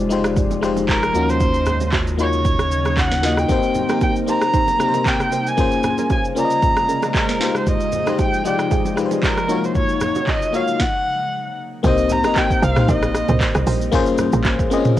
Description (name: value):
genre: amapiano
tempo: 115 BPM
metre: 4/4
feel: swing 55% on 16ths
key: C phrygian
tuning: A4 = 438 Hz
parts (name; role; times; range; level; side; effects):
- FM electric piano; accompaniment; 0.0-15.0 s; Ab3 to Eb5; -21 LUFS; left 5 dB; chorus, cassette tape
- ethereal airy pad; sustained chords; 0.0-15.0 s; C3 to F4; -28 LUFS; right 2 dB; ensemble chorus, built-in reverb, phaser, sidechain pumping, cassette tape
- warm sub bass; bass; 0.0-3.5 s; F1 to Eb2; -24 LUFS; right 1 dB; none
- afro-pop drum kit; drums; 0.1-15.0 s; handclaps, hi-hat, kick drum, rim click, shaker, snare drum, toms; -21 LUFS; right 1 dB; cassette tape
- congas and bongos; percussion; 0.4-15.0 s; none; -30 LUFS; right 8 dB; none
- dark erhu; melody; 0.9-13.7 s; Bb4 to Bb5; -21 LUFS; right 1 dB; cassette tape, analog delay
- soft round pluck; stabs; 3.9-15.0 s; Db4 to Db5; -30 LUFS; right 7 dB; chorus, cassette tape, analog delay
- woody log drum bass; bass; 11.8-14.7 s; G1 to C2; -21 LUFS; right 1 dB; none
room: light reverb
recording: home recording on cassette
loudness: -16 LUFS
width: side -13 dB against mid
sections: 0.0-11.8 A section; 11.8-15.0 B section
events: stop 10.8-11.8; drop 11.8-15.0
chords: 0.0 Fm7; 1.1 Ebm7; 3.5 Cm7; 5.6 Bbm7; 7.4 Fm7; 9.5 Ebm7; 11.8 Cm7; 13.9 Bbm7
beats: 0.36 0.89 | 1.41 1.93 2.45 2.97 | 3.49 4.01 4.54 5.06 | 5.58 6.10 6.62 7.14 | 7.67 8.19 8.71 9.23 | 9.75 10.28 10.80 11.32 | 11.84 12.36 12.88 13.41 | 13.93 14.45 14.97